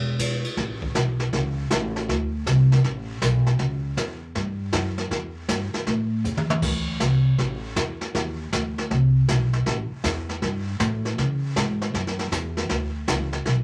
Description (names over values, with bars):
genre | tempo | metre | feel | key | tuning
country, western swing | 158 BPM | 4/4 | swing 66% on 8ths | A mixolydian | A4 = 441 Hz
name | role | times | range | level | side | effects
upright bass | bass | 0.0-13.6 s | E1 to C#3 | -26 LUFS | equal | none
jazz brush drum kit | drums | 0.2-13.6 s | brushed snare drum, crash cymbal, hi-hat, kick drum, ride cymbal, snare drum, toms | -29 LUFS | equal | none
room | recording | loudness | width
moderate club reverb, RT60 0.6 s | none | -24 LUFS | mono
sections
0.6-13.6 A section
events
drum fill 6.2-6.6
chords
none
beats
0.19 | 0.57 0.94 1.32 1.70 | 2.08 2.46 2.84 3.21 | 3.59 3.97 4.35 4.73 | 5.11 5.49 5.87 6.24 | 6.62 7.00 7.38 7.76 | 8.14 8.52 8.90 9.28 | 9.66 10.04 10.42 10.80 | 11.18 11.56 11.94 12.32 | 12.70 13.08 13.46